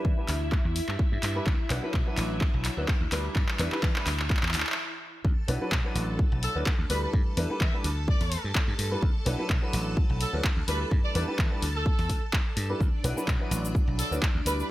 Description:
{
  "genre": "filtered disco house",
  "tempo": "127 BPM",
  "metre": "4/4",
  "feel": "swing 54% on 16ths",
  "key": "D major",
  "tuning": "A4 = 440 Hz",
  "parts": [
    { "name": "warm grand piano", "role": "accompaniment", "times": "0.0-14.7 s", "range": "F#3 to B4", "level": "-33 LUFS", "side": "equal", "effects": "phaser, sidechain pumping, low-pass filter" },
    { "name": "string machine, full ensemble", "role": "sustained chords", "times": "0.0-14.7 s", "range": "D4 to A5", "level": "-38 LUFS", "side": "equal", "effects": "ensemble chorus, sidechain pumping, low-pass filter" },
    { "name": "dry thumbed slap bass", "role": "bass", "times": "0.0-14.6 s", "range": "A1 to E3", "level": "-30 LUFS", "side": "equal", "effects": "sidechain pumping, low-pass filter" },
    { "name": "electronic kick drum", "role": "drums", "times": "0.0-14.3 s", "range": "none", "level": "-26 LUFS", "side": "equal", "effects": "studio ambience" },
    { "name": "house drum kit", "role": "drums", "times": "0.3-14.7 s", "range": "handclaps, hi-hat, shaker", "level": "-32 LUFS", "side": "equal", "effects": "sidechain pumping on hats, studio ambience, sidechain pumping on perc" },
    { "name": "brilliant horn section", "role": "melody", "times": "6.4-14.7 s", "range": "A4 to E5", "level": "-36 LUFS", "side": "right 1 dB", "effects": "sidechain pumping, low-pass filter, dub echo" }
  ],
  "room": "light reverb, digital ambience",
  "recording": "none",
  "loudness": "-25 LUFS",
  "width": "side -16 dB against mid",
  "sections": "0.0-5.2 A section; 5.2-14.7 B section",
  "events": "build-up 0.0-5.2; drum fill 0.0-4.8; stop 4.8-5.2; drop 5.2-14.7",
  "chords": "0.0 G6; 1.5 D69; 3.4 G6; 5.2 D69; 7.1 G6; 9.0 D69; 10.9 G6; 12.8 D69"
}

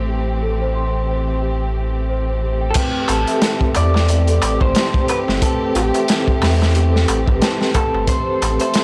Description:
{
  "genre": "trip hop",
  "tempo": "90 BPM",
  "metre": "4/4",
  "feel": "swing 57% on 16ths",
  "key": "unclear",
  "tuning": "A4 = 439 Hz",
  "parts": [
    { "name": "vibraphone with soft mallets", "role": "accompaniment", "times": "0.0-8.8 s", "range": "C4 to C5", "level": "-26 LUFS", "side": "equal", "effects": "tremolo" },
    { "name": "rich studio string section", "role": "sustained chords", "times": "0.0-8.8 s", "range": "E3 to A4", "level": "-28 LUFS", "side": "equal", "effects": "none" },
    { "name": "celesta", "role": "arpeggios", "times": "0.0-8.8 s", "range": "G4 to C6", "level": "-30 LUFS", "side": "equal", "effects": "analog delay" },
    { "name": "warm sub bass", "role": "bass", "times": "0.0-8.6 s", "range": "G1 to E2", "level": "-21 LUFS", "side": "equal", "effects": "tube saturation" },
    { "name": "electric guitar through a small old amp", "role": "melody", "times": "2.7-8.8 s", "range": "G4 to D5", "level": "-25 LUFS", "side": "equal", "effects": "vintage 12-bit sampler grit, tape echo" },
    { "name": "crunchy breakbeat drum kit", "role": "drums", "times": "2.7-8.8 s", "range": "crash cymbal, hi-hat, kick drum, snare drum", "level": "-21 LUFS", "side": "equal", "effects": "none" },
    { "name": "darbuka", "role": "percussion", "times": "2.8-8.8 s", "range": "none", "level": "-29 LUFS", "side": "equal", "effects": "none" }
  ],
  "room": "little or no reverb",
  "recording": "dry, gritty hardware recording, transformer saturation",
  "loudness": "-18 LUFS",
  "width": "mono",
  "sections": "0.0-2.8 A section; 2.8-8.8 B section",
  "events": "filter sweep on celesta 0.0-2.8",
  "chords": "0.0 Am7"
}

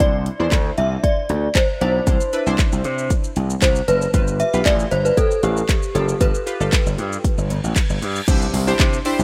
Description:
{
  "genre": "dance-pop",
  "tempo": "116 BPM",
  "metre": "4/4",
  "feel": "straight",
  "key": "C major",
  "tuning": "A4 = 441 Hz",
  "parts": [
    { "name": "synth chime", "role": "melody", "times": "0.0-7.7 s", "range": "G4 to E5", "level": "-24 LUFS", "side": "equal", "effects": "ensemble chorus, dub echo" },
    { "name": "chorused retro synth keys", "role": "accompaniment", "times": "0.0-9.2 s", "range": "D4 to D5", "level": "-28 LUFS", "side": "equal", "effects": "sidechain pumping" },
    { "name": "gritty slap bass", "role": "bass", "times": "0.0-9.2 s", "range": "F#1 to C3", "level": "-24 LUFS", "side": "equal", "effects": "overdrive, sidechain pumping" },
    { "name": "house drum kit", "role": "drums", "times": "0.0-9.2 s", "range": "crash cymbal, handclaps, hi-hat, kick drum, shaker", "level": "-21 LUFS", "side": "equal", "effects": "none" },
    { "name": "reverse cymbal and impact", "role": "sound effects", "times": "7.4-9.2 s", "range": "none", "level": "-35 LUFS", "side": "equal", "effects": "none" }
  ],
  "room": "light reverb, digital ambience",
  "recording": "rough home demo mix",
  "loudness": "-19 LUFS",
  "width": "mono",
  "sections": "0.0-8.3 A section",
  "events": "reverse cymbal 7.4-8.3; impact 8.3-9.2",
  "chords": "0.0 Cadd9; 4.1 G7; 8.3 Cadd9"
}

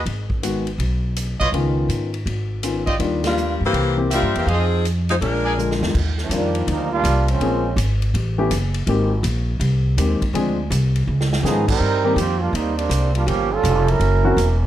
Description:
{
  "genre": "jazz, big band swing",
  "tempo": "164 BPM",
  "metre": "4/4",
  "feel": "swing 65% on 8ths",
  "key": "Eb major",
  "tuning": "A4 = 439 Hz",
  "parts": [
    { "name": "upright bass", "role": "bass", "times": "0.0-14.7 s", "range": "Fb1 to Ab2", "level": "-20 LUFS", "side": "equal", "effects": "none" },
    { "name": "swinging big-band drum kit", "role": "drums", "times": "0.1-14.5 s", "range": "crash cymbal, hi-hat, kick drum, ride cymbal, snare drum", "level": "-29 LUFS", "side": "equal", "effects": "none" },
    { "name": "warm concert grand piano", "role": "accompaniment", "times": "0.4-14.4 s", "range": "D3 to Ab4", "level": "-22 LUFS", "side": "left 3 dB", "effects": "none" },
    { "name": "clear trumpet section", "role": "stabs", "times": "1.4-5.5 s", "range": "F4 to Ab5", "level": "-24 LUFS", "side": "right 1 dB", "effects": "none" },
    { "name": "clear saxophone section", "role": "melody", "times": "3.3-5.8 s", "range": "Fb3 to C5", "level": "-21 LUFS", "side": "left 2 dB", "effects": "none" },
    { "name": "bright trombone section", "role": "second line", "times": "6.2-7.8, 11.4-14.6 s", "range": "Eb3 to Bb4", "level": "-21 LUFS", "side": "right 5 dB", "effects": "none" }
  ],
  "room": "light reverb",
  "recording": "none",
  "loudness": "-17 LUFS",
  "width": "side -12 dB against mid",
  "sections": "0.0-5.9 A section; 5.9-14.7 B section",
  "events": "band accent 3.2; drum fill 5.6-5.9, 11.1-11.4; trombone section solo 5.9-14.7",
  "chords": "0.1 Abm7; 1.5 Db9; 3.0 Ebmaj9; 3.7 C7; 4.5 Fm7; 5.2 Bb7; 5.9 Ebmaj9; 7.4 Bbm9; 8.1 A9; 8.9 Abmaj9; 10.3 Dm7b5; 11.1 Db9; 11.8 Cm7; 13.3 Gm7b5; 14.0 Gb7#11"
}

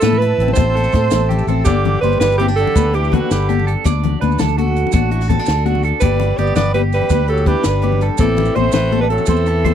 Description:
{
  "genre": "highlife guitar band",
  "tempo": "110 BPM (dotted quarters)",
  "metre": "12/8",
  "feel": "straight",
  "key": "G major",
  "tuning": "A4 = 440 Hz",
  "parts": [
    { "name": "edgy alto saxophone", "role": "melody", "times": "0.0-9.7 s", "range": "F#4 to D5", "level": "-19 LUFS", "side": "right 4 dB", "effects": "none" },
    { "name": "picked steel-string acoustic guitar", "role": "accompaniment", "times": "0.0-9.7 s", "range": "A2 to A4", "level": "-26 LUFS", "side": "left 9 dB", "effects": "none" },
    { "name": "musette accordion", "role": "sustained chords", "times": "0.0-1.6 s", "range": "A5 to E6", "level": "-30 LUFS", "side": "left 1 dB", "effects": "none" },
    { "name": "electric guitar at the edge of break-up", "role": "arpeggios", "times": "0.0-9.7 s", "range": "F#4 to D5", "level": "-23 LUFS", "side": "right 8 dB", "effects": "phaser" },
    { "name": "fingered electric bass", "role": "bass", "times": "0.0-9.7 s", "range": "G1 to A2", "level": "-18 LUFS", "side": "equal", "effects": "none" },
    { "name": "compact cocktail drum kit", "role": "drums", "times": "0.0-9.7 s", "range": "hi-hat, kick drum, snare drum", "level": "-17 LUFS", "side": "equal", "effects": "none" },
    { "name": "congas", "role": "percussion", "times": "0.0-9.7 s", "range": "none", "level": "-22 LUFS", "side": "left 14 dB", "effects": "none" },
    { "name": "maracas", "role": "percussion", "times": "0.0-9.5 s", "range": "none", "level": "-33 LUFS", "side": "right 19 dB", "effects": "none" },
    { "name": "raspy tenor saxophone", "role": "second line", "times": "1.7-9.7 s", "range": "D3 to B3", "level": "-25 LUFS", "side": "left 11 dB", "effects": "none" }
  ],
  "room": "little or no reverb",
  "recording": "dry, close 1970s-style studio recording",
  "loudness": "-13 LUFS",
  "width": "side -9 dB against mid",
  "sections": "0.0-1.7 A section; 1.7-9.7 B section",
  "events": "drum fill 0.8-1.7",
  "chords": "0.0 Am; 1.7 G; 3.8 D; 6.0 G; 8.2 Am"
}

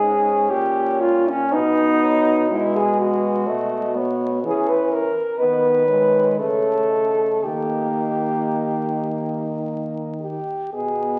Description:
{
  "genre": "classical, lyrical piece for horn quartet",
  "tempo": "53-64 BPM",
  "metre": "3/4",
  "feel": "rubato",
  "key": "unclear",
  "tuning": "A4 = 439 Hz",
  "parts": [
    { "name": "warm French horn", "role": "melody", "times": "0.0-11.2 s", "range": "B4 to D#5", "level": "-32 LUFS", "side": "equal", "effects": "none" },
    { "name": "warm French horn", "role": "second line", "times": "0.0-11.2 s", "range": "Db4 to B4", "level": "-22 LUFS", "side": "equal", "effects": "none" },
    { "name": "clear French horn", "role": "accompaniment", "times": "0.0-11.2 s", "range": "G#3 to C#4", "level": "-28 LUFS", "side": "equal", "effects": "none" },
    { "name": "mellow French horn", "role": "bass", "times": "0.0-11.2 s", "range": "G#2 to E3", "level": "-30 LUFS", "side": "equal", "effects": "none" }
  ],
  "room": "wet recital hall reverb, RT60 1.6 s",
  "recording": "very old 78 rpm record, vinyl crackle, nothing above 10.8 kHz",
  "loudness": "-20 LUFS",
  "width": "mono",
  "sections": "0.0-11.2 A section",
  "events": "none",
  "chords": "0.5 Gdim/Bb; 1.5 G#m/B; 3.5 B7; 4.4 E5; 6.4 A/C#; 7.4 D#"
}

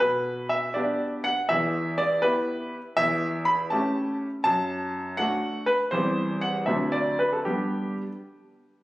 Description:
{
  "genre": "classical-period piano sonatina",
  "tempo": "81 BPM (dotted quarters)",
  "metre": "6/8",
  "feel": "straight",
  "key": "G major",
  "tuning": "A4 = 439 Hz",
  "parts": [
    { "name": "clear baby grand piano", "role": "solo", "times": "0.0-8.1 s", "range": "D2 to B5", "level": "-23 LUFS", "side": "equal", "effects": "none" }
  ],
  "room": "moderate recital hall reverb, RT60 1.7 s",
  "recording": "recorded on a phone in the room, studio reverb, compression",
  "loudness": "-23 LUFS",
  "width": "side -17 dB against mid",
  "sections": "0.0-8.8 A section",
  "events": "none",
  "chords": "0.0 G/B; 1.5 Em; 3.0 A7/E; 4.5 D/F#; 5.9 C/E; 6.7 D7; 7.5 G"
}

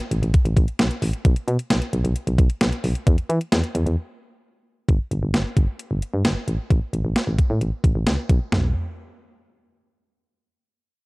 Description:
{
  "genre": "synth-pop",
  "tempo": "132 BPM",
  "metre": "4/4",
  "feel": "straight",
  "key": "unclear",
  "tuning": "A4 = 440 Hz",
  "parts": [
    { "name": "clean 12-bit digital drum machine", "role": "drums", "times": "0.0-8.6 s", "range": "hi-hat, kick drum, snare drum, toms", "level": "-20 LUFS", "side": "equal", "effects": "overdrive" },
    { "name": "solid FM bass", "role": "bass", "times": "0.1-8.7 s", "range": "G1 to E3", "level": "-22 LUFS", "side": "equal", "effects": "none" }
  ],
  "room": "little or no reverb",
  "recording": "dark, warm production",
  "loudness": "-19 LUFS",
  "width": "side -26 dB against mid",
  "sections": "0.0-4.9 A section; 4.9-8.5 B section; 8.5-10.3 C section",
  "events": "break 4.0-4.9",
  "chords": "none"
}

